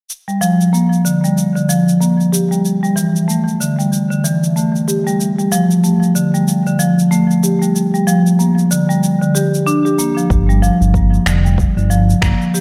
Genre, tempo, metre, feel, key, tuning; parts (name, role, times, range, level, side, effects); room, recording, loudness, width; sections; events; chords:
organic downtempo; 94 BPM; 4/4; swing 59% on 16ths; G dorian; A4 = 443 Hz
electronic cabasa and finger snaps; drums; 0.1-12.6 s; -25 LUFS; equal
marimba with medium mallets; arpeggios; 0.3-12.6 s; D3 to G4; -15 LUFS; equal; low-pass filter, tape echo
smooth synth bass; bass; 10.3-12.3 s; F1 to G1; -16 LUFS; equal; sidechain pumping
electronic kick drum; drums; 10.3-12.4 s; -19 LUFS; equal
moderate lush hall reverb, RT60 1.9 s; -14 LUFS; mono
0.1-12.6 A section
filter sweep on marimba 0.1-12.6
0.1 Gm7; 2.6 A5; 5.2 F; 7.8 Dmadd11; 10.3 Gm7